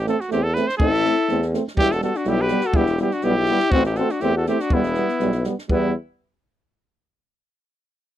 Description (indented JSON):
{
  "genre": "balkan folk, Balkan brass band",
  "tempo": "122 BPM",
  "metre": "2/4",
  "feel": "swing 55% on 16ths",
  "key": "E minor",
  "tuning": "A4 = 440 Hz",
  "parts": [
    { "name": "clear trumpet", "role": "melody", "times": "0.0-5.9 s", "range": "E4 to C5", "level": "-23 LUFS", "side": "right 2 dB", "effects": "none" },
    { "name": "clear tuba", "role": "bass", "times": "0.0-5.9 s", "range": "E1 to E2", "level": "-24 LUFS", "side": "equal", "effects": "none" },
    { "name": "warm euphonium", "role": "accompaniment", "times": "0.1-5.9 s", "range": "G3 to A3", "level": "-26 LUFS", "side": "right 7 dB", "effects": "none" },
    { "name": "warm trombone", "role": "accompaniment", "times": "0.1-5.9 s", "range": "B3 to C4", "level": "-27 LUFS", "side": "left 4 dB", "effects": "none" },
    { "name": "compact cocktail drum kit", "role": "percussion", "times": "0.1-5.9 s", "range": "kick drum, snare drum", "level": "-25 LUFS", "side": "equal", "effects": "none" },
    { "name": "mellow alto saxophone", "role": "second line", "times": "0.8-5.9 s", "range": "B3 to G4", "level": "-24 LUFS", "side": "left 6 dB", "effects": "none" }
  ],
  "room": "little or no reverb",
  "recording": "dry, close 1970s-style studio recording",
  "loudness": "-18 LUFS",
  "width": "side -12 dB against mid",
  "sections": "0.0-5.7 A section",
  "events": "none",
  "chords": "0.0 Am; 1.8 Em; 3.7 Am; 4.7 Em"
}